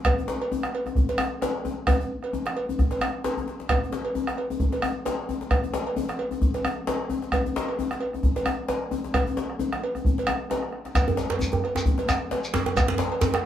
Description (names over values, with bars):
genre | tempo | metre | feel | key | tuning
west african traditional, West African drum ensemble | 132 BPM | 4/4 | swing 55% on 16ths | none | none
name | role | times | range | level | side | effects
bombo | percussion | 0.0-13.4 s | none | -25 LUFS | right 1 dB | none
cowbell | percussion | 0.1-13.2 s | none | -31 LUFS | right 2 dB | none
djembe | percussion | 0.1-13.4 s | none | -28 LUFS | left 3 dB | none
shekere | percussion | 11.0-13.3 s | none | -31 LUFS | equal | none
djembe | percussion | 11.1-13.4 s | none | -26 LUFS | right 4 dB | none
room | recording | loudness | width
wet small room reverb, RT60 0.5 s | heard from further back in the room | -24 LUFS | side -10 dB against mid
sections
0.0-11.0 A section; 11.0-13.5 B section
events
drum fill 3.4-3.7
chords
none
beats
| 0.07 0.52 0.98 1.43 | 1.88 2.34 2.79 3.25 | 3.70 4.15 4.61 5.06 | 5.51 5.97 6.42 6.88 | 7.33 7.78 8.24 8.69 | 9.14 9.60 10.05 10.50 | 10.95 11.41 11.86 12.31 | 12.77 13.22